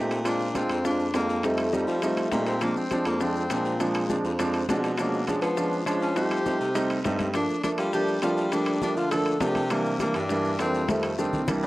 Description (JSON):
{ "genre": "Afro-Cuban jazz", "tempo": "203 BPM", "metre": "4/4", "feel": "straight", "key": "F mixolydian", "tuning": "A4 = 438 Hz", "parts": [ { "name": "warm tenor saxophone", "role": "melody", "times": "0.0-11.7 s", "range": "G3 to A4", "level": "-29 LUFS", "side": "left 1 dB", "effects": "cassette tape" }, { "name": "clear concert grand piano", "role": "accompaniment", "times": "0.0-11.7 s", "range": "Eb3 to G4", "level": "-27 LUFS", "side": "right 1 dB", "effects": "cassette tape" }, { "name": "clear baritone saxophone", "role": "bass", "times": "0.0-11.7 s", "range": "C2 to G3", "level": "-30 LUFS", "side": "equal", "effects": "none" }, { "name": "bongos", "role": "percussion", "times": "0.1-11.6 s", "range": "none", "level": "-38 LUFS", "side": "left 6 dB", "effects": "none" }, { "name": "guiro", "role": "percussion", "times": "0.1-11.7 s", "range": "none", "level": "-46 LUFS", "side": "left 5 dB", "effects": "none" }, { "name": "maracas", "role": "percussion", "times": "0.1-11.7 s", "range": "none", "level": "-46 LUFS", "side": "left 5 dB", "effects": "none" }, { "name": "timbales", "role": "percussion", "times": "0.1-11.7 s", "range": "none", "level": "-36 LUFS", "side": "right 1 dB", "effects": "none" }, { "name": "congas", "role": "percussion", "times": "0.3-11.6 s", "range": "none", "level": "-35 LUFS", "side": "left 2 dB", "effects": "none" } ], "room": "light reverb", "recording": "home recording on cassette", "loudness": "-23 LUFS", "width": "side -18 dB against mid", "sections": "0.0-11.7 A section", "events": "drum fill 10.9-11.7", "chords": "0.3 Bb9; 1.4 F9; 2.6 Bb9; 5.0 Bdim7; 6.2 F9; 7.3 Gm7; 9.7 C9; 10.9 F9" }